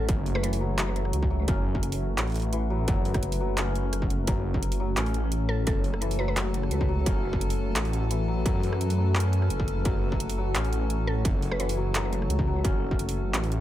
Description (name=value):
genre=half-time drum and bass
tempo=172 BPM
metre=4/4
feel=swing 53% on 16ths, half-time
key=F# minor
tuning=A4 = 440 Hz
part: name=mallet-like synth pluck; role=melody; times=0.0-0.5, 5.5-6.3, 11.1-11.7 s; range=A4 to B4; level=-36 LUFS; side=left 1 dB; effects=chorus, tape echo
part: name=deep dark ambient pad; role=sustained chords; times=0.0-13.6 s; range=A3 to F#5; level=-35 LUFS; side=left 1 dB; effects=chorus, built-in reverb, sidechain pumping
part: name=santur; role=arpeggios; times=0.0-13.6 s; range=E3 to C#4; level=-33 LUFS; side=left 4 dB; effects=analog delay
part: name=dark detuned saw bass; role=bass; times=0.0-13.6 s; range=F#1 to F#2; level=-27 LUFS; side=equal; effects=none
part: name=drum and bass drum kit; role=drums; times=0.1-13.6 s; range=handclaps, hi-hat, rim click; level=-32 LUFS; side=right 1 dB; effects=overdrive
part: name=electronic kick drum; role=drums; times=0.1-13.0 s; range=none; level=-28 LUFS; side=equal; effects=distortion
part: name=metallic inharmonic drone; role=texture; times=5.3-13.6 s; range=A4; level=-39 LUFS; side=left 3 dB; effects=chorus, built-in reverb
room=digital ambience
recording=echo-heavy mix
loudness=-24 LUFS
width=side -13 dB against mid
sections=0.0-13.6 A section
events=none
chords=0.0 F#m